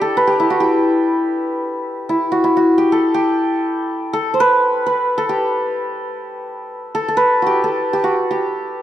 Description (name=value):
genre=Persian modal ensemble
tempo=free time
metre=none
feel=none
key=G dastgah mahur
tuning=A4 = 440 Hz
part: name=santur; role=solo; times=0.0-8.8 s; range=D4 to C5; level=-15 LUFS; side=equal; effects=none
room=moderate recital hall reverb, RT60 1.7 s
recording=close, detailed microphones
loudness=-15 LUFS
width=side -12 dB against mid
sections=0.0-8.8 A section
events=none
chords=none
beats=free time